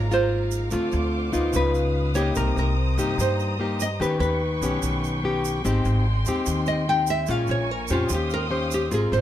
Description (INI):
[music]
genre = bossa nova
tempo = 146 BPM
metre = 4/4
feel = straight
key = unclear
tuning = A4 = 440 Hz
[part]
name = nylon-string guitar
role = melody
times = 0.0-9.2 s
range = F4 to G5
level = -26 LUFS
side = equal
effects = plate reverb
[part]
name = nylon-string guitar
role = accompaniment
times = 0.0-9.2 s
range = G2 to C5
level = -26 LUFS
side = left 2 dB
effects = none
[part]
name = rich studio violin section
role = sustained chords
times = 0.0-9.2 s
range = Ab3 to Eb6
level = -32 LUFS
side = right 1 dB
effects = none
[part]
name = upright bass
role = bass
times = 0.0-9.2 s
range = Ab1 to G2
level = -26 LUFS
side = equal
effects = none
[part]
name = egg shaker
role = percussion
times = 0.1-9.2 s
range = none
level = -37 LUFS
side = right 11 dB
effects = none
[sound]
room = light reverb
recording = none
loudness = -21 LUFS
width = side -11 dB against mid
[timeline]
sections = 0.0-8.9 A section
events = nylon-string guitar solo 0.0-8.9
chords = 0.0 Db6 (rootless); 0.7 Dm7; 1.5 Db9; 2.4 Cm7; 4.0 Ebaug7; 5.6 Abmaj7; 7.3 Bbm7; 8.1 Eb13